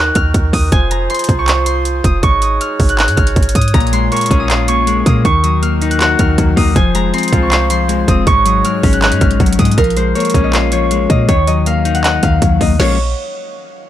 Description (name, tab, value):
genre	hip hop, trap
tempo	159 BPM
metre	4/4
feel	half-time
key	Bb minor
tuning	A4 = 441 Hz
part	concert harp	melody	0.0-13.0 s	Bb4 to Gb6	-17 LUFS	right 1 dB	none
part	warm woodwind section	sustained chords	0.0-9.8 s	Eb3 to Db5	-22 LUFS	right 3 dB	none
part	clean 808-style bass	bass	0.0-13.1 s	F1 to Bb2	-16 LUFS	right 1 dB	none
part	trap drum kit	drums	0.2-12.9 s	crash cymbal, handclaps, hi-hat, kick drum, snare drum	-15 LUFS	right 1 dB	none
part	clean electric guitar	accompaniment	3.7-13.0 s	Ab2 to F5	-16 LUFS	left 7 dB	none
room	digital ambience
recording	none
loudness	-10 LUFS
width	side -12 dB against mid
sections	0.0-9.8 A section; 9.8-12.8 B section; 12.8-13.9 C section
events	none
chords	0.0 Ebm; 0.7 Fm; 2.2 Ab7sus4; 3.7 Bbm7; 5.2 Ebm; 6.8 Fm; 8.3 Ab7sus4; 9.8 Bbm7; 11.3 Ebm; 12.8 Bbm7